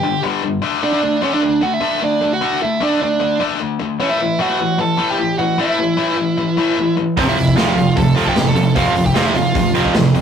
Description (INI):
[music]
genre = punk rock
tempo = 151 BPM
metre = 4/4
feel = straight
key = unclear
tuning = A4 = 444 Hz
[part]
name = high-gain lead guitar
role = melody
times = 0.0-9.9 s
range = C4 to A5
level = -18 LUFS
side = right 3 dB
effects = distortion
[part]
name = tight distorted guitar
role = riff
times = 0.0-10.2 s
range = F2 to D4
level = -18 LUFS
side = left 5 dB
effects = distortion
[part]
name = cranked stack guitar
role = riff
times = 7.2-10.2 s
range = F2 to F3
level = -17 LUFS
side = right 8 dB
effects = overdrive
[part]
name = fuzz picked electric bass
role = bass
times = 7.2-10.2 s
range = F1 to A1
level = -23 LUFS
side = equal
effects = overdrive
[part]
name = big rock drum kit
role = drums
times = 7.2-10.2 s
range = hi-hat, kick drum, snare drum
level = -20 LUFS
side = equal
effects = none
[sound]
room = moderate studio reverb, RT60 0.5 s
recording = rough rehearsal-room recording, tube saturation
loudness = -14 LUFS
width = side -7 dB against mid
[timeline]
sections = 0.0-10.2 A section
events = none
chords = 0.0 G5; 0.6 D; 4.0 A5; 7.2 F